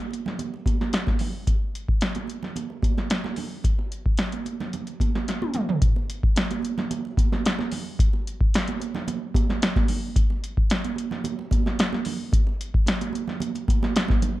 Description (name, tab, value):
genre	funk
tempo	111 BPM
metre	4/4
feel	straight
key	none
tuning	none
part	electro analog drum machine	drums	0.1-14.4 s	hi-hat, kick drum, snare drum, toms	-23 LUFS	equal	none
part	congas	percussion	0.1-14.4 s	none	-30 LUFS	right 6 dB	none
room	digital ambience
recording	dark, warm production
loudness	-22 LUFS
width	side -16 dB against mid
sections	0.0-5.8 A section; 5.8-14.4 B section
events	drum fill 5.3-5.8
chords	none